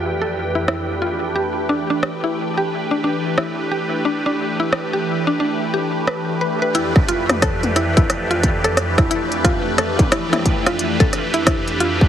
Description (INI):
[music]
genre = IDM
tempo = 89 BPM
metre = 4/4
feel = swing 62% on 16ths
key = unclear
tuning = A4 = 440 Hz
[part]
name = phased analog pad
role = sustained chords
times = 0.0-12.1 s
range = F2 to B4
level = -21 LUFS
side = equal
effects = phaser, chorus
[part]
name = flickering grainy texture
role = texture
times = 0.0-6.8 s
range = G4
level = -30 LUFS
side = right 1 dB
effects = built-in reverb, sidechain pumping
[part]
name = mallet-like synth pluck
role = arpeggios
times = 0.2-12.0 s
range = D4 to B4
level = -22 LUFS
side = left 1 dB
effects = chorus, dub echo
[part]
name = industrial drum kit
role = drums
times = 0.7-12.0 s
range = hi-hat, rim click, toms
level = -22 LUFS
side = equal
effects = dub echo
[part]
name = electronic kick drum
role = drums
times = 7.0-12.1 s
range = none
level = -17 LUFS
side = equal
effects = distortion
[sound]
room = moderate plate reverb, RT60 2.2 s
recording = heavily compressed radio sound, multiband compression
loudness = -16 LUFS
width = side -10 dB against mid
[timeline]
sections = 0.0-6.7 A section; 6.7-12.1 B section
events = filter sweep on synth arpeggio sound 0.0-6.7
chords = 0.0 Fmaj7; 1.4 Em7; 6.7 Fmaj7